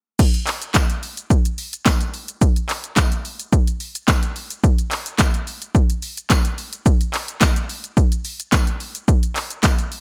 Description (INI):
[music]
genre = pop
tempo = 108 BPM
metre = 4/4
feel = straight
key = none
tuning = none
[part]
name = punchy analog drum machine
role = drums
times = 0.2-10.0 s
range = crash cymbal, handclaps, hi-hat, kick drum, shaker, snare drum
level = -20 LUFS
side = equal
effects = gated reverb
[part]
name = tambourine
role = percussion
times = 0.7-9.8 s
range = none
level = -35 LUFS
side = equal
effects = none
[sound]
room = digital ambience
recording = bright 1980s-style digital production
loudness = -20 LUFS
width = mono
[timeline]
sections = 0.2-10.0 A section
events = break 0.0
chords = none